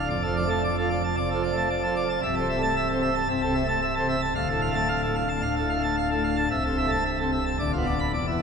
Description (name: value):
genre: classical, organ toccata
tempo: 112 BPM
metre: 4/4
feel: straight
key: unclear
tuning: A4 = 440 Hz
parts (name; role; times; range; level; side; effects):
- pipe organ, plenum; solo; 0.0-8.4 s; C1 to B5; -23 LUFS; equal; none
room: wet cathedral reverb, RT60 5.1 s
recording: recorded in a church or concert hall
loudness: -23 LUFS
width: side -6 dB against mid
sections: 0.0-8.4 A section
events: none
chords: 0.1 Dm/F; 2.2 Am/C; 4.4 Dm; 6.5 Am/C; 7.6 Bdim/D